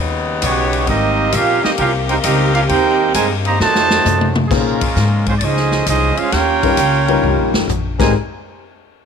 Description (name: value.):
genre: jazz, big band swing.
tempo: 132 BPM.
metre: 4/4.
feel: swing 68% on 8ths.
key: Ab major.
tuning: A4 = 440 Hz.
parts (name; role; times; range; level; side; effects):
clear saxophone section; sustained chords; 0.0-4.5 s; C3 to G4; -21 LUFS; left 2 dB; none.
upright bass; bass; 0.0-8.1 s; G1 to Bb2; -19 LUFS; left 2 dB; none.
warm trumpet section; melody; 0.4-8.1 s; Ab3 to Bb5; -17 LUFS; right 2 dB; none.
clear trombone section; second line; 0.4-8.1 s; Ab2 to G4; -21 LUFS; right 13 dB; none.
swinging big-band drum kit; drums; 0.4-8.1 s; crash cymbal, hi-hat, kick drum, ride cymbal, snare drum, toms; -20 LUFS; left 2 dB; none.
warm concert grand piano; accompaniment; 4.5-8.1 s; G3 to C5; -19 LUFS; left 16 dB; none.
room: light reverb, small room ambience.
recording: 1960s-style stereo with parts hard left and right.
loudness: -13 LUFS.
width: side -6 dB against mid.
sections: 0.0-4.5 A section; 4.5-8.1 B section.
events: drum fill 3.6-4.5, 7.2-8.1.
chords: 0.0 Eb7alt; 0.9 Abmaj9; 3.6 F7b9; 4.5 Bbm11; 6.3 Eb9; 7.9 Abmaj9; 8.1 N.C..